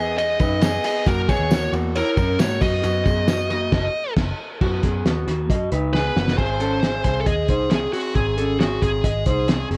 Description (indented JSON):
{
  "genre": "jangly indie pop",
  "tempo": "135 BPM",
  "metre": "4/4",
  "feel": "straight",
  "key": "unclear",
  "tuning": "A4 = 440 Hz",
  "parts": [
    { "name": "high-gain lead guitar", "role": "melody", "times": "0.0-9.7 s", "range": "F#4 to E5", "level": "-28 LUFS", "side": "equal", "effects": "distortion, tape echo" },
    { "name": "electric guitar through a small old amp", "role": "arpeggios", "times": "0.0-9.8 s", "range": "A#3 to D#5", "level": "-27 LUFS", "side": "equal", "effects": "none" },
    { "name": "vintage muted picked electric bass", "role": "bass", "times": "0.0-9.8 s", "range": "F#1 to G#2", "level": "-28 LUFS", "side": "equal", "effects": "none" },
    { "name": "cloth-damped thuddy drum kit", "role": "drums", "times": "0.2-9.8 s", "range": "crash cymbal, hi-hat, kick drum, ride cymbal, snare drum", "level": "-25 LUFS", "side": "equal", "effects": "none" },
    { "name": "tambourine", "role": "percussion", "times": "0.2-3.6 s", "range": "none", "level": "-46 LUFS", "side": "equal", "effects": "none" }
  ],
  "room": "light reverb",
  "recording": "dry, gritty hardware recording",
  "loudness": "-21 LUFS",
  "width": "mono",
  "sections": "0.0-4.6 A section; 4.6-6.4 B section; 6.4-9.8 C section",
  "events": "band accent 3.7-4.6; drum fill 5.9-6.4",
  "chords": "0.0 Emaj7; 1.1 F#7; 2.6 B/F#; 4.6 B; 6.4 G#",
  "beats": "0.18 0.63 | 1.07 1.51 1.95 2.40 | 2.84 3.28 3.72 4.17 | 4.61 5.05 5.49 5.94 | 6.38 6.83 7.27 7.71 | 8.16 8.60 9.04 9.49"
}